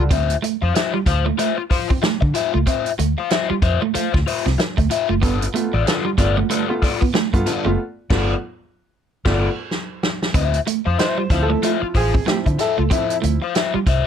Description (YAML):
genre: funk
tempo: 94 BPM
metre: 4/4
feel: swing 60% on 16ths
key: D dorian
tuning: A4 = 438 Hz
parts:
  - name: crunchy overdriven guitar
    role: accompaniment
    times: 0.0-14.1 s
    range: F4 to F5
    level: -22 LUFS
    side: left 11 dB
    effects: phaser
  - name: clear upright piano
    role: stabs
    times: 0.0-0.1, 5.2-13.4 s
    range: G2 to C5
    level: -24 LUFS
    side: right 2 dB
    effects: none
  - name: vintage muted fingered electric bass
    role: bass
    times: 0.0-14.0 s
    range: F#1 to D3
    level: -20 LUFS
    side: equal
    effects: none
  - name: electric guitar at the edge of break-up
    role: riff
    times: 0.1-13.9 s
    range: G3 to C4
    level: -24 LUFS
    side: right 11 dB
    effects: warbly pitch drift
  - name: vintage drum kit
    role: drums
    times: 0.1-14.0 s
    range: crash cymbal, hi-hat, kick drum, snare drum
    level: -21 LUFS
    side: equal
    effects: none
room: little or no reverb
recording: none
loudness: -17 LUFS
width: side -8 dB against mid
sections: 0.0-10.3 A section; 10.3-14.1 B section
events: band accent 7.8-10.3; drum fill 9.7-10.3; upright piano solo 10.3-14.1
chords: 0.1 Dm9; 5.2 G9; 10.3 Dm9